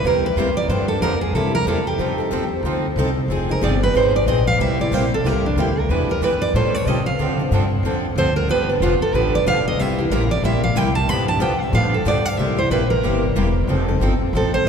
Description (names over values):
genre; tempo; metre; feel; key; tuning
acoustic string swing (jazz manouche); 185 BPM; 4/4; swing 61% on 8ths; C mixolydian; A4 = 441 Hz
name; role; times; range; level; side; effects
picked steel-string acoustic guitar; melody; 0.0-14.7 s; D4 to B5; -21 LUFS; right 2 dB; none
picked steel-string acoustic guitar; accompaniment; 0.0-14.7 s; C3 to B4; -25 LUFS; right 2 dB; none
upright bass; bass; 0.0-14.7 s; E1 to D3; -21 LUFS; left 1 dB; none
picked steel-string acoustic guitar; accompaniment; 0.1-14.7 s; C3 to A4; -25 LUFS; left 4 dB; none
room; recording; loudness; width
wet cathedral reverb, RT60 4.7 s; recorded in a church or concert hall; -17 LUFS; side -6 dB against mid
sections
0.0-12.4 A section; 12.4-14.7 A section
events
steel-string acoustic guitar solo 0.0-14.7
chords
0.0 C7; 0.7 Gm7; 1.3 C7; 2.0 F7; 3.3 Fm7; 4.6 C7; 5.9 Em7; 6.5 A7alt; 7.2 Dm7; 8.5 G7; 9.8 C7; 11.1 G7; 12.4 C7; 13.7 F7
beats
0.04 0.37 | 0.69 1.02 1.34 1.67 | 1.99 2.32 2.64 2.97 | 3.29 3.62 3.94 4.27 | 4.59 4.92 5.24 5.57 | 5.89 6.22 6.54 6.87 | 7.19 7.52 7.84 8.16 | 8.49 8.81 9.14 9.46 | 9.79 10.11 10.44 10.76 | 11.09 11.41 11.74 12.06 | 12.39 12.71 13.04 13.36 | 13.69 14.01 14.33 14.66